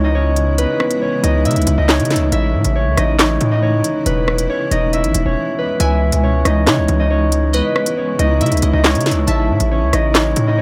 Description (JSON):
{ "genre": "hip hop, drill", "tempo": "138 BPM", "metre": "4/4", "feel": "half-time", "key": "C# minor", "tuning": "A4 = 440 Hz", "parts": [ { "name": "concert harp", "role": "melody", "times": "0.0-10.6 s", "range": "A3 to E5", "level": "-20 LUFS", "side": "equal", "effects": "low-pass filter" }, { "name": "granular cloud pad", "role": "sustained chords", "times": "0.0-10.6 s", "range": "B2 to E4", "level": "-27 LUFS", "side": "equal", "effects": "built-in reverb" }, { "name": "distorted 808-style bass", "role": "bass", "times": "0.0-10.6 s", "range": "E1 to C#3", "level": "-19 LUFS", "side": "equal", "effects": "distortion" }, { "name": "drill drum kit", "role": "drums", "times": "0.4-10.5 s", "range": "handclaps, hi-hat, rim click, snare drum", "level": "-20 LUFS", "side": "equal", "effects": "analog delay" }, { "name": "glassy wavetable pluck", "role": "second line", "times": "5.8-9.7 s", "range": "D#5 to A5", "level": "-29 LUFS", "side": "equal", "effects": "chorus, analog delay" } ], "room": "digital ambience", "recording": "echo-heavy mix", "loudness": "-16 LUFS", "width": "mono", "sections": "0.0-10.6 A section", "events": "break 5.4-5.8", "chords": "0.0 C#madd9; 2.3 A; 4.1 E; 5.8 C#madd9; 9.3 A", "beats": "0.15 | 0.58 1.02 1.45 1.89 | 2.32 2.76 3.19 3.63 | 4.06 4.50 4.93 5.37 | 5.80 6.24 6.67 7.11 | 7.54 7.97 8.41 8.84 | 9.28 9.71 10.15 10.58" }